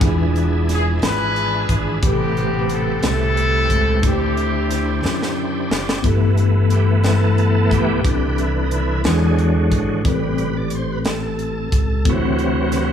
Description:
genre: slow gospel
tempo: 60 BPM (dotted quarters)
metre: 6/8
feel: straight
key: G major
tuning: A4 = 441 Hz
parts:
  - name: warm horn section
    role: melody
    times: 0.0-5.4 s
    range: B3 to B4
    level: -22 LUFS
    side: left 2 dB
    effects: tape echo
  - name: mellow tine electric piano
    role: accompaniment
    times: 0.0-12.9 s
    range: G2 to C5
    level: -23 LUFS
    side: left 2 dB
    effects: medium stereo tremolo
  - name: bright tonewheel organ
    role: sustained chords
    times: 0.0-12.9 s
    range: C3 to G5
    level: -23 LUFS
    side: right 2 dB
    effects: slow rotary speaker, chorus vibrato
  - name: modern bright fingered electric bass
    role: bass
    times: 0.0-12.9 s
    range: E1 to F#2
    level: -20 LUFS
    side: equal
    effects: none
  - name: crisp fusion drum kit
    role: drums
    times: 0.0-12.9 s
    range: hi-hat, kick drum, snare drum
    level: -22 LUFS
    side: equal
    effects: none
room: light reverb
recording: small room ambience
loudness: -16 LUFS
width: side -8 dB against mid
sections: 0.0-6.0 A section; 6.0-12.9 B section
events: drum fill 5.0-6.0; tonewheel organ fill 5.0-6.0; tonewheel organ solo 6.0-12.9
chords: 0.0 E7b9; 2.0 Am9; 4.0 D9sus4; 6.0 G69; 8.1 Cmaj9; 9.1 E7; 10.1 Am9; 12.1 D13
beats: | 0.01 1.02 | 2.02 3.03 | 4.03 5.04 | 6.04 7.05 | 8.05 9.05 | 10.06 11.06 | 12.07

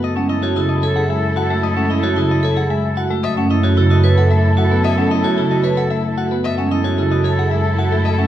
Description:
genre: classical, minimalist pattern music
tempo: 112 BPM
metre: 3/4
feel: straight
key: F# dorian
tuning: A4 = 440 Hz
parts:
  - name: clean electric guitar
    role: melody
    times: 0.0-8.3 s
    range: G#4 to F#5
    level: -26 LUFS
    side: left 9 dB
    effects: none
  - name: warm oboe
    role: second line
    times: 0.0-8.3 s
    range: A4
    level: -27 LUFS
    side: right 2 dB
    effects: none
  - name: marimba with medium mallets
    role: accompaniment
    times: 0.0-8.3 s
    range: C#3 to B3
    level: -21 LUFS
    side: left 1 dB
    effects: none
  - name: rich studio string section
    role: sustained chords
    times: 0.0-8.3 s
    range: E4 to A4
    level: -25 LUFS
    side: left 4 dB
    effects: none
  - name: rich studio double bass section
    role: bass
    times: 0.0-8.3 s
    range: F#2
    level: -19 LUFS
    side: right 1 dB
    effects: none
  - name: vibraphone with hard mallets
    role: arpeggios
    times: 0.2-8.3 s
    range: C#4 to B4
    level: -21 LUFS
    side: right 5 dB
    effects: none
  - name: rich violin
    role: arpeggios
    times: 3.2-8.2 s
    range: E5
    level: -28 LUFS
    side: left 6 dB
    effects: none
room: wet recital hall reverb, RT60 1.3 s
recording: dark, warm production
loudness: -14 LUFS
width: side -12 dB against mid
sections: 0.0-8.3 A section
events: none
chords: 0.0 F#m9; 3.2 B9sus4/F#; 6.5 F#m9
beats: | 0.02 0.56 1.09 | 1.63 2.16 2.70 | 3.24 3.77 4.31 | 4.84 5.38 5.91 | 6.45 6.99 7.52 | 8.06

